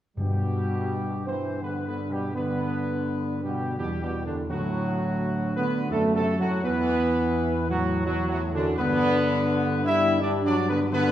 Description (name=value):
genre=classical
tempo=84 BPM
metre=3/4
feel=straight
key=G major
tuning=A4 = 440 Hz
part: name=clear trumpet section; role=melody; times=0.2-11.1 s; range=D4 to E5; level=-32 LUFS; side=left 1 dB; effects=none
part: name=warm French horn section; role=sustained chords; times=0.2-11.1 s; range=F#2 to G3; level=-30 LUFS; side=left 3 dB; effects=none
part: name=warm trombone section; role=sustained chords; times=0.2-11.1 s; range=D3 to E4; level=-27 LUFS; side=right 1 dB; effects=none
part: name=dark tuba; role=bass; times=0.2-11.1 s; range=D2 to G2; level=-28 LUFS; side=right 1 dB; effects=none
part: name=timpani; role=percussion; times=0.2-1.2 s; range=G2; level=-29 LUFS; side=equal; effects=none
room=wet recital hall reverb, RT60 1.6 s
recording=heard from further back in the room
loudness=-23 LUFS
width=side -11 dB against mid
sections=0.2-11.1 A section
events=none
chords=0.2 G; 4.5 D; 6.6 E5; 8.8 G